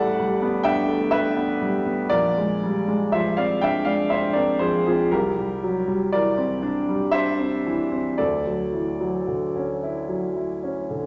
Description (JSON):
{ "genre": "classical, impressionist solo piano", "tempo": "54-64 BPM", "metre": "3/4", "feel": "rubato", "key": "unclear", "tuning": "A4 = 440 Hz", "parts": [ { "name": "clear concert grand piano", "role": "solo", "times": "0.0-11.1 s", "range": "A1 to A5", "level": "-23 LUFS", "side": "equal", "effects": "none" } ], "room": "wet recital hall reverb, RT60 1.6 s", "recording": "nothing above 7.8 kHz", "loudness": "-23 LUFS", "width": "mono", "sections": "0.0-11.1 A section", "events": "none", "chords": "0.0 A9sus4; 2.1 Bb9; 5.1 C9; 8.2 Dmaj9", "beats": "0.18 1.13 | 2.12 3.12 4.11 | 5.12 6.12 7.13 | 8.18 9.27 10.36" }